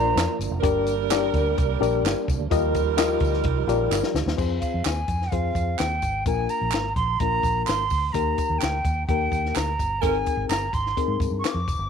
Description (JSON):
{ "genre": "uptempo 1960s-style soul", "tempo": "128 BPM", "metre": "4/4", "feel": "straight", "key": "Bb mixolydian", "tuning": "A4 = 436 Hz", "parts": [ { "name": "breathy bright jazz flute", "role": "melody", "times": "0.0-0.4, 4.6-11.9 s", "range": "F5 to D6", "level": "-26 LUFS", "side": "right 3 dB", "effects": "none" }, { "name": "edgy saxophone section", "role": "second line", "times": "0.0-4.1, 10.0-10.2 s", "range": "Eb3 to C5", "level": "-28 LUFS", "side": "right 14 dB", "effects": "none" }, { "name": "reed electric piano", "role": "accompaniment", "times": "0.0-11.6 s", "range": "Bb3 to Eb5", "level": "-26 LUFS", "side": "left 13 dB", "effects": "fast tremolo" }, { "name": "mellow tonewheel organ", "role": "sustained chords", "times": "0.0-4.4 s", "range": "F3 to Eb4", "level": "-31 LUFS", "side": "right 16 dB", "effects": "fast rotary speaker, chorus vibrato" }, { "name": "vintage muted fingered electric bass", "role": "bass", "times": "0.0-11.9 s", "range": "F1 to Ab2", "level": "-27 LUFS", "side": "right 1 dB", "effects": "none" }, { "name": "compact cocktail drum kit", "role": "drums", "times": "0.2-11.8 s", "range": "crash cymbal, hi-hat, kick drum, snare drum", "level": "-28 LUFS", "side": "left 2 dB", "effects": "none" }, { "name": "handclaps and tambourine", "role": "percussion", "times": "0.2-11.8 s", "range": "none", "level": "-34 LUFS", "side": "right 7 dB", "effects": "none" } ], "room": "moderate spring reverb, RT60 2.1 s", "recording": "1960s-style stereo with parts hard left and right", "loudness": "-21 LUFS", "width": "side -7 dB against mid", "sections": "0.0-4.4 A section; 4.4-11.9 B section", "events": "drum fill 3.9-4.4; band accent 10.0-11.9", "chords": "0.0 Bb; 0.6 Gm; 2.5 Ebadd9; 4.4 Fm; 6.3 Bb; 8.1 Eb; 10.0 Abadd9", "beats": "0.16 | 0.63 1.10 1.57 2.04 | 2.51 2.98 3.44 3.91 | 4.38 4.85 5.32 5.79 | 6.26 6.74 7.21 7.68 | 8.15 8.62 9.09 9.56 | 10.03 10.50 10.97 11.44" }